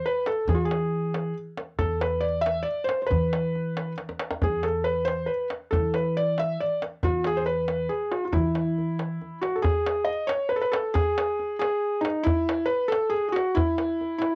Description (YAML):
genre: Persian modal ensemble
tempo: 92 BPM (dotted quarters)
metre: 6/8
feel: straight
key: E dastgah homayun, E dastgah mahur from 9.6 s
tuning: A4 = 440 Hz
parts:
  - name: felt-muted upright piano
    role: melody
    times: 0.0-14.3 s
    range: D#4 to E5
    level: -27 LUFS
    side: equal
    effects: cassette tape
  - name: tombak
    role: percussion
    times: 0.3-14.3 s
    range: none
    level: -31 LUFS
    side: equal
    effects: none
  - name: upright bass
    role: bass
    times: 0.5-9.2 s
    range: E2 to E3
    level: -32 LUFS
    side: equal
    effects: none
room: light reverb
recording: home recording on cassette, nothing above 10.7 kHz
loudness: -26 LUFS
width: mono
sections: 0.0-9.6 A section; 9.6-14.3 B section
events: drum fill 4.0-4.4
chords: none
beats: | 0.49 1.14 | 1.80 2.45 | 3.10 3.76 | 4.41 5.07 | 5.72 6.37 | 7.03 7.68 | 8.34 8.99 | 9.64 10.30 | 10.95 11.60 | 12.25 12.91 | 13.56 14.21